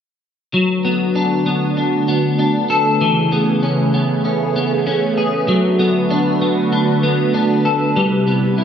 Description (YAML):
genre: dream pop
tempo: 97 BPM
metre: 4/4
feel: straight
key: D lydian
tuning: A4 = 439 Hz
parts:
  - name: phased analog pad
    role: sustained chords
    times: 0.5-8.6 s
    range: C3 to B4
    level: -18 LUFS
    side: right 2 dB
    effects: phaser, chorus
  - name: clean electric guitar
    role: arpeggios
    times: 0.5-8.6 s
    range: E3 to A4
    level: -16 LUFS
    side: left 1 dB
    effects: analog chorus, analog delay
room: wet echo chamber reverb, RT60 1.6 s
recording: echo-heavy mix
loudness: -14 LUFS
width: side -8 dB against mid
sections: 0.5-8.6 A section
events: none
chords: 0.5 D6; 3.0 Amaj9; 5.5 D6; 8.0 Cmaj7